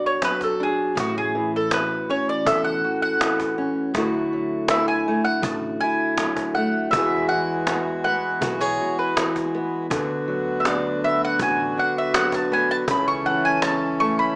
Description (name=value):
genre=acoustic folk duo or small band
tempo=81 BPM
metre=4/4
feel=straight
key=unclear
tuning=A4 = 442 Hz
part: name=mandolin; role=second line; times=0.0-14.4 s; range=F#4 to C#6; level=-22 LUFS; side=equal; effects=none
part: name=fingerpicked steel-string acoustic guitar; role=accompaniment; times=0.0-14.4 s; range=E2 to A4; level=-24 LUFS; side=equal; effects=none
part: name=cajon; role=percussion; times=0.2-14.3 s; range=none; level=-26 LUFS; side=equal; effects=none
part: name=upright bass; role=bass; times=1.0-14.3 s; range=A1 to E2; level=-36 LUFS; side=equal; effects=none
part: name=pedal harmonium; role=sustained chords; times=6.9-14.4 s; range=D3 to A4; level=-27 LUFS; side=equal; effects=none
room=moderate large studio reverb, RT60 0.8 s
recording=small speaker sound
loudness=-19 LUFS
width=side -29 dB against mid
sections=0.0-14.4 A section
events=mandolin solo 0.0-14.4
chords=0.0 Bm; 1.0 A6; 3.9 Dadd9; 6.9 Eadd9; 9.9 D6; 12.9 A/C#